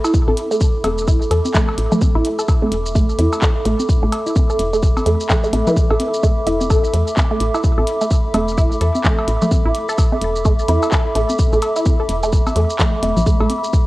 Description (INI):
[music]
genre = minimal techno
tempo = 128 BPM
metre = 4/4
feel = swing 60% on 16ths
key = unclear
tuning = A4 = 439 Hz
[part]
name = resonant blip pluck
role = riff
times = 0.0-13.4 s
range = E3 to A4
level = -22 LUFS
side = right 1 dB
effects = phaser, sidechain pumping, cassette tape, tape echo
[part]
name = minimal click drum kit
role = drums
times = 0.0-13.8 s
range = handclaps, hi-hat, shaker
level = -26 LUFS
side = equal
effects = studio reverb, cassette tape
[part]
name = cowbell and congas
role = percussion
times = 0.0-13.6 s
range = none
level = -25 LUFS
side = left 1 dB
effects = studio reverb, cassette tape, tape echo
[part]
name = warbly tape-like pad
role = texture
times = 0.0-13.9 s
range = A4 to D6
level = -22 LUFS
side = equal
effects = chorus, built-in reverb, sidechain pumping, cassette tape
[part]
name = electronic kick drum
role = drums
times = 0.1-13.8 s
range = none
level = -15 LUFS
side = equal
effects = studio reverb, cassette tape
[part]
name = woody FM bass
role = bass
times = 0.3-13.5 s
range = E1 to E2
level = -20 LUFS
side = equal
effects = sidechain pumping
[sound]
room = digital ambience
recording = home recording on cassette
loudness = -14 LUFS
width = side -18 dB against mid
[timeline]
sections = 0.0-13.9 A section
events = none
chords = 0.0 Asus4